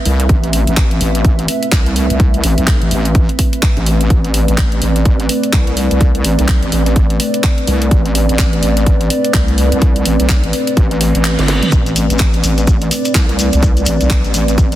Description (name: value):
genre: bass house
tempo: 126 BPM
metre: 4/4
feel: swing 60% on 16ths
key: A minor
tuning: A4 = 441 Hz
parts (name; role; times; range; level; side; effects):
- dark analog pad; sustained chords; 0.0-14.8 s; A3 to E5; -18 LUFS; equal; chorus, sidechain pumping
- wobble bass; bass; 0.1-14.8 s; G1 to C2; -15 LUFS; equal; chorus, overdrive, sidechain pumping
- house drum kit; drums; 0.1-14.8 s; handclaps, hi-hat, snare drum, toms; -20 LUFS; equal; none
- electronic kick drum; drums; 0.3-14.7 s; none; -13 LUFS; equal; none
- reverse cymbal; sound effects; 11.0-11.7 s; none; -25 LUFS; equal; none
- shekere; percussion; 11.7-14.8 s; none; -24 LUFS; left 2 dB; none
room: little or no reverb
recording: dense, heavily limited modern master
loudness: -11 LUFS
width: side -13 dB against mid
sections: 0.0-14.8 A section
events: reverse cymbal 11.0-11.7; kick drops out 11.2-11.7; drum fill 11.4-11.7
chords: 0.0 Amadd9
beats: | 0.29 0.77 1.25 1.72 | 2.20 2.67 3.15 3.63 | 4.10 4.58 5.05 5.53 | 6.01 6.48 6.96 7.44 | 7.91 8.39 8.86 9.34 | 9.82 10.29 10.77 11.24 | 11.72 12.20 12.67 13.15 | 13.63 14.10 14.58